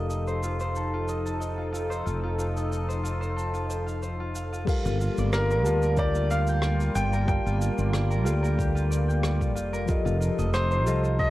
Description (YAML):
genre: sunset chillout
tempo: 92 BPM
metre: 4/4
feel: swing 53% on 16ths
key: G minor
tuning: A4 = 441 Hz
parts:
  - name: mellow tine electric piano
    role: accompaniment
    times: 0.0-11.3 s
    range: F3 to A5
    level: -33 LUFS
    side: moving between left 4 dB and right 3 dB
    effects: medium stereo tremolo, auto-pan, ping-pong delay
  - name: lush unison pad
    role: sustained chords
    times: 0.0-11.3 s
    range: F3 to A4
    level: -34 LUFS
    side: equal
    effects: chorus
  - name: concert harp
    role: arpeggios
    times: 0.0-11.3 s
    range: F4 to A5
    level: -34 LUFS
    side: equal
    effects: low-pass filter, ping-pong delay
  - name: mellow fretless electric bass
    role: bass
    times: 0.0-11.3 s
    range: F1 to D2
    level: -27 LUFS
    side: equal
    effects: none
  - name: jazz brush drum kit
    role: drums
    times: 0.1-11.3 s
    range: crash cymbal, rim click, shaker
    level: -38 LUFS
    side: equal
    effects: none
  - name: electronic kick drum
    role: drums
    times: 4.7-11.3 s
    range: none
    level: -27 LUFS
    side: equal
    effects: none
  - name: clear baby grand piano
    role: melody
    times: 5.3-11.3 s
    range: Bb4 to G5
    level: -30 LUFS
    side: left 1 dB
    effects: tape echo
room: moderate plate reverb, RT60 2.0 s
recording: worn, warbling old tape, cassette tape, warbly pitch drift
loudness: -24 LUFS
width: side -16 dB against mid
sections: 0.0-4.7 A section; 4.7-11.3 B section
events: none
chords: 0.0 F7; 4.7 Gm7; 9.9 F7